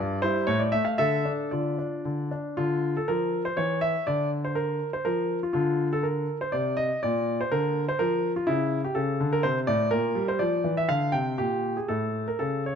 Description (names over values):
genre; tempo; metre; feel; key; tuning
classical-period piano sonatina; 111-127 BPM; 3/4; rubato; D minor; A4 = 439 Hz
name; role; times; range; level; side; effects
warm concert grand piano; solo; 0.0-12.8 s; G2 to G5; -24 LUFS; equal; none
room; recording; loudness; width
light reverb; close, detailed microphones; -24 LUFS; side -7 dB against mid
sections
0.0-2.6 A section; 2.6-12.8 B section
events
none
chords
0.5 N.C.; 1.0 Dm; 3.6 N.C.; 4.1 Dm; 5.5 N.C.; 7.0 Bb; 8.5 C#m; 9.4 D5/C; 9.9 Gm/Bb; 11.4 N.C.